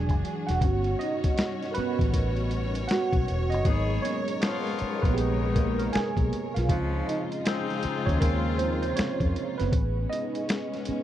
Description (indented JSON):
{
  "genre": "R&B, neo-soul",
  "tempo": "79 BPM",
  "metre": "4/4",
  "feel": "swing 63% on 16ths",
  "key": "Db major",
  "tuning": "A4 = 440 Hz",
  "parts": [
    { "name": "tine electric piano", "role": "accompaniment", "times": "0.0-11.0 s", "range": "F3 to G#5", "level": "-29 LUFS", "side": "right 4 dB", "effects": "analog chorus" },
    { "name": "warm studio string section", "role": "sustained chords", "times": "0.0-11.0 s", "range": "Db3 to Db5", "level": "-34 LUFS", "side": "left 5 dB", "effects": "none" },
    { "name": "vintage muted fingered electric bass", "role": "bass", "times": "0.0-10.9 s", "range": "E1 to F2", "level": "-28 LUFS", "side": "left 1 dB", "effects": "none" },
    { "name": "boom bap sampler-style drum kit", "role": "drums", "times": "0.1-11.0 s", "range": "hi-hat, kick drum, snare drum", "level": "-27 LUFS", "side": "left 1 dB", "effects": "none" },
    { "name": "warm horn section", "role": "stabs", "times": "3.7-8.9 s", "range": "Eb3 to Ab4", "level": "-33 LUFS", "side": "left 6 dB", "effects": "none" }
  ],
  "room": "little or no reverb",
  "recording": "dry, close 1970s-style studio recording",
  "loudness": "-24 LUFS",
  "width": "side -12 dB against mid",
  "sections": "0.0-11.0 A section",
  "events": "tine electric piano solo 0.0-11.0",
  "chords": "0.0 E9; 0.6 Eb7alt/G; 3.6 Abm9; 6.7 Dbmaj9; 9.7 Amaj9"
}